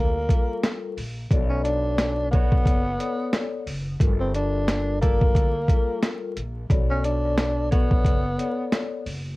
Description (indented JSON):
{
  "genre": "hip hop, boom-bap hip-hop",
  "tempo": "89 BPM",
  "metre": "4/4",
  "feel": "swing 57% on 16ths",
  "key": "B minor",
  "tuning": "A4 = 440 Hz",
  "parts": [
    { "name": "growling tenor saxophone", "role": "melody", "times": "0.0-8.9 s", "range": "Bb3 to D4", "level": "-27 LUFS", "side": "equal", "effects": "high-pass filter, low-pass filter, cassette tape" },
    { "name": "vibraphone with soft mallets", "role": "accompaniment", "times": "0.0-9.0 s", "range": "G3 to D5", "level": "-31 LUFS", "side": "left 5 dB", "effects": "cassette tape, high-pass filter, low-pass filter" },
    { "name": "upright bass", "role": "bass", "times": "0.0-9.4 s", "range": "F#1 to D2", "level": "-28 LUFS", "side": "equal", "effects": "none" },
    { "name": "boom bap sampler-style drum kit", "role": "drums", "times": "0.3-9.2 s", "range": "hi-hat, kick drum, snare drum", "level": "-21 LUFS", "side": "equal", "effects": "overdrive, vintage 12-bit sampler grit" },
    { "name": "mellow saxophone section", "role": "stabs", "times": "2.3-7.9 s", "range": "A3 to D5", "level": "-42 LUFS", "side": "right 6 dB", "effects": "high-pass filter, low-pass filter, cassette tape, tape echo" }
  ],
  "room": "little or no reverb",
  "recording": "home recording on cassette, vinyl crackle",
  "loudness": "-21 LUFS",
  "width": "side -21 dB against mid",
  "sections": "0.0-9.4 A section",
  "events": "none",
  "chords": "0.0 Gm9; 1.3 Bm9; 4.0 Gm9; 6.7 Bm9"
}